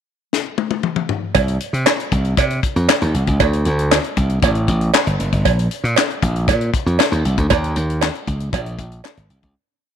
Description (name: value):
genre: early-eighties boogie funk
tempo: 117 BPM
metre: 4/4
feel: straight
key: unclear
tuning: A4 = 440 Hz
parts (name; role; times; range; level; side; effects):
- tight funk drum kit; drums; 0.3-9.5 s; handclaps, hi-hat, kick drum, snare drum, toms; -20 LUFS; left 5 dB; none
- slap bass; bass; 1.3-9.5 s; F#1 to C3; -18 LUFS; equal; none
- cowbell; percussion; 1.3-9.2 s; none; -21 LUFS; right 12 dB; none
room: light reverb, studio ambience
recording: 1960s-style stereo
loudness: -15 LUFS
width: side -8 dB against mid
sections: 0.0-1.4 pickup bar; 1.4-9.6 breakdown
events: drum fill 0.3-1.4; fade-out 7.5-9.6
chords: none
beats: 0.33 0.84 | 1.35 1.86 2.38 2.89 | 3.40 3.92 4.43 4.94 | 5.45 5.97 6.48 6.99 | 7.50 8.02 8.53 9.04